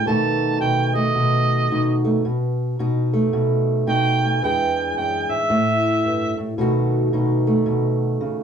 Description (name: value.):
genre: acoustic country blues, solo or duo.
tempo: 110 BPM.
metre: 4/4.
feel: swing 63% on 8ths.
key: unclear.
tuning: A4 = 440 Hz.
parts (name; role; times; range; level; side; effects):
mellow harmonica; melody; 0.0-6.4 s; D#5 to A5; -21 LUFS; right 3 dB; none.
fingerpicked old ladder-braced acoustic guitar; accompaniment; 0.0-8.4 s; E2 to G#4; -19 LUFS; equal; none.
room: moderate studio reverb, RT60 0.5 s.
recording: small room ambience.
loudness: -18 LUFS.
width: side -7 dB against mid.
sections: 0.0-8.4 A section.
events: harmonica solo 0.0-8.4.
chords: 0.1 B7; 4.4 E7; 5.5 A5; 6.6 B7.